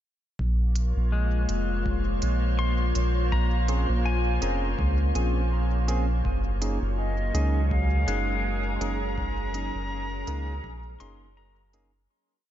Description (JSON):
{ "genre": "ambient dub", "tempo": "82 BPM", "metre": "4/4", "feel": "swing 57% on 16ths", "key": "Bb minor", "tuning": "A4 = 444 Hz", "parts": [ { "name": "soft additive organ-like pad", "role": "sustained chords", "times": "0.4-12.1 s", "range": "Gb3 to Db5", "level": "-32 LUFS", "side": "equal", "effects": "ensemble chorus, built-in reverb" }, { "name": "soft dub sub bass", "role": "bass", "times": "0.4-12.1 s", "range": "F1 to Db2", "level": "-25 LUFS", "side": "equal", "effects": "tube saturation" }, { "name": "electronic kick drum", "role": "drums", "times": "0.4-10.8 s", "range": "none", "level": "-32 LUFS", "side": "equal", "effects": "overdrive, studio reverb" }, { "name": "electronic hi-hat", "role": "drums", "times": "0.8-11.9 s", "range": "none", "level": "-38 LUFS", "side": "right 3 dB", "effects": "studio reverb" }, { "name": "pedal steel guitar", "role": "arpeggios", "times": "1.1-12.3 s", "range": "Ab3 to C6", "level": "-35 LUFS", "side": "left 4 dB", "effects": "dub echo" }, { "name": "barky tine electric piano", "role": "stabs", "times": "3.7-11.9 s", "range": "Bb3 to Ab4", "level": "-36 LUFS", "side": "right 2 dB", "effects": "dub echo" }, { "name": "silver concert flute", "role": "melody", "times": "7.0-11.4 s", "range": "Eb5 to C6", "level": "-34 LUFS", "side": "left 1 dB", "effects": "dub echo" } ], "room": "light reverb, digital ambience", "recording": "nothing above 7.5 kHz", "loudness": "-24 LUFS", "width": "side -11 dB against mid", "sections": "0.4-12.1 groove", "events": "fade-out 8.2-12.1", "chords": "0.4 Bbm9; 6.2 Gb69" }